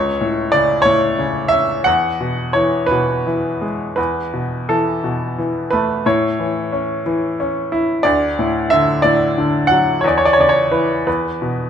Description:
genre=classical, lyrical solo piano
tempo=55-61 BPM (dotted quarters)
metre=6/8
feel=rubato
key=A major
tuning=A4 = 440 Hz
part: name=bright upright piano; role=solo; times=0.0-11.7 s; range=C#2 to F#5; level=-15 LUFS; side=equal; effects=none
room=moderate recital hall reverb, RT60 1.6 s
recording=minimal, uncompressed stereo recording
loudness=-15 LUFS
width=side -8 dB against mid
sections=0.0-11.7 A section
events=none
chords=0.0 A/C#; 1.9 Eadd9; 4.0 Esus4; 6.0 A; 8.1 D; 10.0 C#m7/E; 11.1 E5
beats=0.86 | 1.87 2.91 | 3.98 5.03 | 6.05 7.05 | 8.05 9.05 | 10.04 11.07

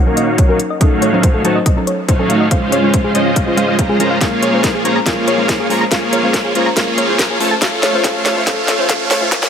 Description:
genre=future bass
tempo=141 BPM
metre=4/4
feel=half-time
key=unclear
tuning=A4 = 437 Hz
part: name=soft round pluck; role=accompaniment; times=0.0-9.5 s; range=Gb3 to Db5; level=-20 LUFS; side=left 2 dB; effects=chorus, sidechain pumping, dub echo
part: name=dense compressed supersaw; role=riff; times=0.0-9.5 s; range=Ab3 to Bb5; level=-16 LUFS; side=right 1 dB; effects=sidechain pumping, low-pass filter, dub echo
part: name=riser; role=sound effects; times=0.7-9.5 s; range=none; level=-26 LUFS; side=right 1 dB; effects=none
part: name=thumb-piano-like synth pluck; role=arpeggios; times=0.2-9.4 s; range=Ab4 to Bb5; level=-21 LUFS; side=left 2 dB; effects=chorus, sidechain pumping, dub echo
part: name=trap drum kit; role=drums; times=0.2-9.5 s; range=hi-hat, snare drum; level=-19 LUFS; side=equal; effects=none
part: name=electronic kick drum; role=drums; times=0.4-9.4 s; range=none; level=-15 LUFS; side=equal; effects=none
room=light reverb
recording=high-pass filter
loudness=-12 LUFS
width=side -8 dB against mid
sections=0.0-9.5 A section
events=build-up 0.0-9.5; filter sweep on supersaw synth 0.0-9.5; filter sweep on synth arpeggio sound 0.0-9.5; filter sweep 0.0-9.5; riser 0.7-9.5; drum fill 4.2-9.5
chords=0.0 Ebm7; 0.6 F7b9b13; 2.5 Dbmaj7; 4.2 Bbm9; 7.4 F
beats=0.38 | 0.81 1.23 1.66 2.08 | 2.51 2.94 3.36 3.79 | 4.21 4.64 5.06 5.49 | 5.92 6.34 6.77 7.19 | 7.62 8.04 8.47 8.89 | 9.32

